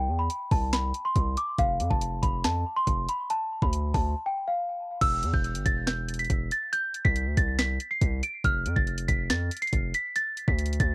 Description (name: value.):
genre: hip hop, trap.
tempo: 140 BPM.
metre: 4/4.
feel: half-time.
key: E phrygian.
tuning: A4 = 440 Hz.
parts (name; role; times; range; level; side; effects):
small celesta; melody; 0.0-10.9 s; F5 to D7; -28 LUFS; equal; low-pass filter, cassette tape, tape echo.
distorted 808-style bass; bass; 0.0-10.9 s; E1 to F2; -28 LUFS; equal; distortion.
trap drum kit; drums; 0.3-10.9 s; crash cymbal, hi-hat, kick drum, snare drum; -27 LUFS; equal; cassette tape.
room: little or no reverb.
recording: home recording on cassette.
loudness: -24 LUFS.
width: side -24 dB against mid.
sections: 0.0-5.0 A section; 5.0-10.9 B section.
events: break 4.2-5.0.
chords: 0.0 C; 1.6 F; 3.3 Dm; 5.0 Em; 6.7 Amadd9/C (rootless); 8.4 F; 10.2 D5.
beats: 0.30 0.73 1.16 | 1.59 2.01 2.44 2.87 | 3.30 3.73 4.16 4.59 | 5.01 5.44 5.87 6.30 | 6.73 7.16 7.59 8.01 | 8.44 8.87 9.30 9.73 | 10.16 10.59.